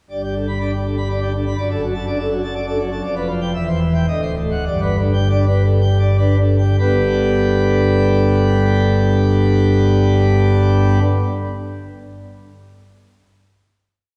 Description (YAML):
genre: classical, organ toccata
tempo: 72-124 BPM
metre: 3/4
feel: straight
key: G major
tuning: A4 = 439 Hz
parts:
  - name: pipe organ, plenum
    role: solo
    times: 0.1-11.0 s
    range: D1 to B5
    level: -17 LUFS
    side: equal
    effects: none
room: wet church reverb, RT60 2.8 s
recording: heard from further back in the room, studio reverb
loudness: -17 LUFS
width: mono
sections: 0.1-6.8 A section; 6.8-11.8 final chord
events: slowing down 2.3-6.8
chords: 0.1 G; 1.6 D/F#; 3.0 G7/F; 3.5 C/E; 4.1 D7b9; 4.7 G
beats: | 0.11 0.60 1.09 | 1.58 2.07 2.55 | 3.04 3.55 4.08 | 4.67 5.30 6.01 | 6.80 7.64 8.47 | 9.30 10.12 10.95